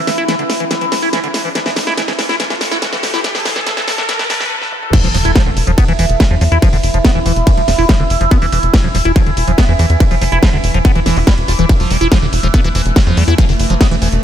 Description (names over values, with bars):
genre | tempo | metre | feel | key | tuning
psychedelic trance | 142 BPM | 4/4 | straight | unclear | A4 = 445 Hz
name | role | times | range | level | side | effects
overtone-sweeping drone | sustained chords | 0.0-14.2 s | E3 to A4 | -20 LUFS | right 1 dB | chorus, built-in reverb, phaser, sidechain pumping
riser and impact | sound effects | 0.3-6.6 s | none | -24 LUFS | equal | none
liquid acid bass | riff | 0.1-14.1 s | D3 to F4 | -19 LUFS | moving between left 4 dB and right 4 dB | phaser, auto-pan, sidechain pumping, digital delay
techno drum kit | drums | 0.1-14.2 s | crash cymbal, hi-hat, ride cymbal, snare drum, toms | -20 LUFS | equal | none
electronic kick drum | drums | 4.9-13.9 s | none | -12 LUFS | equal | distortion
tight sequencer bass | bass | 5.0-14.2 s | E1 to E2 | -14 LUFS | equal | none
room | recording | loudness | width
little or no reverb | high-pass filter | -11 LUFS | side -10 dB against mid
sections
0.0-4.9 A section; 4.9-14.2 B section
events
build-up 0.0-4.9; drum fill 0.0-4.5, 4.6-4.9; filter sweep on acid bass 0.0-4.9; filter sweep 0.0-4.9; riser 0.3-4.5; break 4.5-4.9; drop 4.9-14.2; impact 4.9-6.6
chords
0.0 E5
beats
0.28 0.71 1.13 | 1.55 1.98 2.40 2.82 | 3.24 3.67 4.09 4.51 | 4.93 5.36 5.78 6.20 | 6.62 7.05 7.47 7.89 | 8.31 8.74 9.16 9.58 | 10.00 10.43 10.85 11.27 | 11.69 12.12 12.54 12.96 | 13.38 13.81 14.23